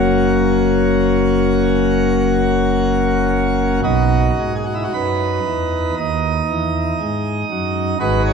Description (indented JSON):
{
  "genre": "classical, chorale-style piece for pipe organ",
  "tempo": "53-60 BPM",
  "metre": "4/4",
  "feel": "rubato",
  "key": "B major",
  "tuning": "A4 = 443 Hz",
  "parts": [
    { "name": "pipe organ, plenum", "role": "solo", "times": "0.0-8.3 s", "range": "F#1 to D#5", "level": "-15 LUFS", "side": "equal", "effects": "none" }
  ],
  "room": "wet church reverb, RT60 2.9 s",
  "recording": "dark, warm production",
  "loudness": "-15 LUFS",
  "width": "side -6 dB against mid",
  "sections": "0.0-3.8 A section; 3.8-8.3 B section",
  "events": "none",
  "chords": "0.0 F#; 3.8 B"
}